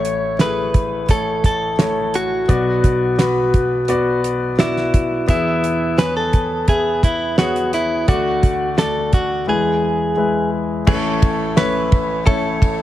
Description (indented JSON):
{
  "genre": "piano-driven pop",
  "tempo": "86 BPM",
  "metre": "4/4",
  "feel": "straight",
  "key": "A major",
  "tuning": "A4 = 441 Hz",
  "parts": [
    { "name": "direct-recorded clean electric guitar", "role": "melody", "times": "0.0-12.8 s", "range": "E4 to C#5", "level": "-20 LUFS", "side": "equal", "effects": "none" },
    { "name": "warm concert grand piano", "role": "accompaniment", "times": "0.0-12.8 s", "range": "A1 to G#5", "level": "-20 LUFS", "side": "left 2 dB", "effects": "none" },
    { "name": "damped 70s drum kit", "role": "drums", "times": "0.0-12.8 s", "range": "crash cymbal, hi-hat, kick drum, ride cymbal, snare drum", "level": "-16 LUFS", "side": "right 1 dB", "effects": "none" }
  ],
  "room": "light reverb, small room ambience",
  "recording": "none",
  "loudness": "-15 LUFS",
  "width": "side -13 dB against mid",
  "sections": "0.0-10.9 A section; 10.9-12.8 B section",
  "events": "none",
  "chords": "0.0 A; 2.5 Bm; 5.3 E; 8.1 D; 9.5 E; 10.9 A"
}